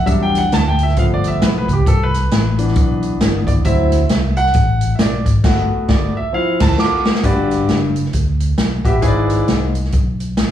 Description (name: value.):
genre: uptempo gospel.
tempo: 134 BPM.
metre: 4/4.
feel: swing 60% on 8ths.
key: G major.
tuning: A4 = 440 Hz.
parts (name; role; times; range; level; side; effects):
clear concert grand piano; accompaniment; 0.0-9.7 s; G2 to D6; -18 LUFS; left 1 dB; slapback echo.
fingered electric bass; bass; 0.0-10.5 s; F#1 to E2; -18 LUFS; equal; none.
swinging big-band drum kit; drums; 0.1-10.5 s; crash cymbal, hi-hat, kick drum, snare drum; -17 LUFS; equal; none.
room: light reverb.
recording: live gig heard through the venue's PA, club reverb.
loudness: -13 LUFS.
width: side -10 dB against mid.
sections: 0.0-7.2 A section; 7.2-10.5 B section.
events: grand piano solo 0.0-7.2; band accent 5.4-7.2; drum fill 6.3-7.2.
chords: 0.1 Em7; 1.0 G7; 1.9 Cmaj7; 3.7 D7; 5.4 Gmaj7; 6.3 Dm7; 6.8 Bm7b5/A; 7.2 Gmaj7; 9.0 E7/G#.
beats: | 0.07 0.52 0.97 1.42 | 1.87 2.31 2.76 3.21 | 3.66 4.11 4.55 5.00 | 5.45 5.90 6.34 6.79 | 7.24 7.69 8.14 8.58 | 9.03 9.48 9.93 10.38.